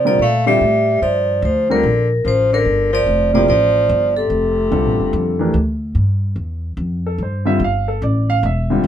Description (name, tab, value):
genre	modal jazz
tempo	146 BPM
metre	4/4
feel	swing 64% on 8ths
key	G dorian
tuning	A4 = 440 Hz
part	vibraphone with medium mallets	melody	0.0-5.5 s	A4 to F5	-16 LUFS	right 2 dB	none
part	warm tenor saxophone	second line	0.0-5.5 s	C3 to A3	-21 LUFS	left 5 dB	none
part	warm grand piano	accompaniment	0.0-8.9 s	C3 to F5	-19 LUFS	equal	none
part	upright bass	bass	0.0-8.9 s	E1 to C3	-19 LUFS	equal	none
room	light reverb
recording	minimal, uncompressed stereo recording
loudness	-14 LUFS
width	side -10 dB against mid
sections	0.0-6.0 A section; 6.0-8.9 B section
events	none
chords	0.0 Gm9; 2.7 F6; 6.0 Gsus2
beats	0.19 0.60 | 1.01 1.43 1.84 2.25 | 2.66 3.07 3.48 3.89 | 4.31 4.72 5.13 5.54 | 5.96 6.37 6.78 7.19 | 7.61 8.02 8.43 8.85